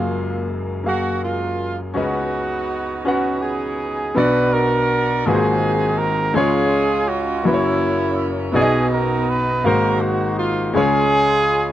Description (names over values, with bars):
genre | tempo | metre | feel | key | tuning
gospel | 55 BPM (dotted quarters) | 6/8 | straight | F# major | A4 = 444 Hz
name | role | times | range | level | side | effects
warm horn section | melody | 0.0-11.7 s | G#3 to B4 | -20 LUFS | right 2 dB | none
clear grand piano | accompaniment | 0.0-11.7 s | F#1 to F#5 | -19 LUFS | left 1 dB | slapback echo
room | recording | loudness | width
little or no reverb | recorded outdoors, with no room sound | -17 LUFS | side -12 dB against mid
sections
0.0-4.2 A section; 4.2-11.7 B section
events
none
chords
0.0 F#maj9; 2.0 C#9sus4; 4.2 Bm; 5.3 G#13; 6.4 C#; 7.5 F#7; 8.6 B; 9.7 G#13; 10.7 C#